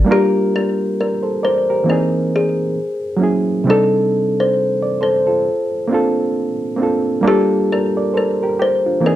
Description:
hip hop; 67 BPM; 4/4; swing 57% on 16ths; G minor; A4 = 439 Hz
reed electric piano; accompaniment; 0.0-9.2 s; C3 to D5; -17 LUFS; right 2 dB; low-pass filter
kalimba; melody; 0.1-9.2 s; G4 to C5; -18 LUFS; left 2 dB; low-pass filter, slapback echo
moderate studio reverb, RT60 0.6 s; dark, warm production; -14 LUFS; side -13 dB against mid
0.1-9.2 A section
0.1 Gm7; 1.9 C7alt; 2.8 F#9; 3.7 Cm69; 5.5 Bbmaj9; 7.3 Gm9
| 0.09 0.99 1.88 2.78 | 3.67 4.57 5.46 6.36 | 7.26 8.15 9.05

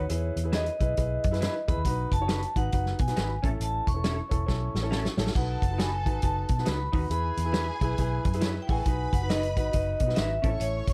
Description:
uptempo 1960s-style soul; 137 BPM; 4/4; swing 62% on 8ths; B mixolydian; A4 = 441 Hz
vibraphone with hard mallets; melody; 0.0-10.9 s; C#5 to C#6; -35 LUFS; equal
clear upright piano; accompaniment; 0.0-10.9 s; C4 to C#5; -38 LUFS; equal; plate reverb
vintage muted fingered electric bass; bass; 0.0-10.9 s; E1 to B2; -32 LUFS; equal
warm soul drum kit; drums; 0.1-10.9 s; hi-hat, kick drum, snare drum, splash cymbal; -31 LUFS; equal
electric guitar through a small old amp; stabs; 0.5-10.5 s; C#4 to B4; -39 LUFS; equal; ensemble chorus, plate reverb
warm studio violin section; second line; 5.3-10.9 s; C#4 to C#6; -42 LUFS; equal; plate reverb
light reverb; -28 LUFS; mono
0.0-10.9 A section
drum fill 4.5-5.4
0.1 E; 1.8 B; 3.4 A; 5.4 B; 7.1 E; 8.9 B; 10.4 A
| 0.10 0.53 0.97 1.41 | 1.85 2.29 2.72 3.16 | 3.60 4.04 4.48 4.92 | 5.35 5.79 6.23 6.67 | 7.11 7.55 7.98 8.42 | 8.86 9.30 9.74 10.17 | 10.61

